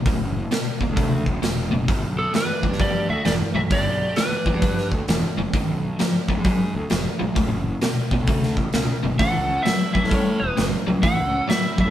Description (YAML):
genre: blues rock power trio and southern rock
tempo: 131 BPM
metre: 4/4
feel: swing 64% on 8ths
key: D major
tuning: A4 = 440 Hz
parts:
  - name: crunchy overdriven guitar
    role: riff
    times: 0.0-11.9 s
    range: D2 to G3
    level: -24 LUFS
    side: left 1 dB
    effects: tremolo
  - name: fuzz fingered electric bass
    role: bass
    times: 0.1-11.9 s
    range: D1 to A2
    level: -27 LUFS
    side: equal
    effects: overdrive
  - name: big rock drum kit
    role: drums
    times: 0.1-11.9 s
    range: hi-hat, kick drum, snare drum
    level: -24 LUFS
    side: equal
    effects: none
  - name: lightly driven lead guitar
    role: melody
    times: 2.2-4.9, 9.2-11.9 s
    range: A4 to F#5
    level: -24 LUFS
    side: equal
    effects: slapback echo
  - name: nasal lead guitar with a parked wah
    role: second line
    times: 2.2-4.9, 9.2-11.9 s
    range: B3 to A4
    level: -32 LUFS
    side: right 4 dB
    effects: overdrive
room: moderate studio reverb, RT60 0.8 s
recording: band playing live in one room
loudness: -19 LUFS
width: side -12 dB against mid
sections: 0.0-11.9 A section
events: none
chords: 0.0 D; 1.9 G; 5.5 G#m6; 7.4 D; 9.2 A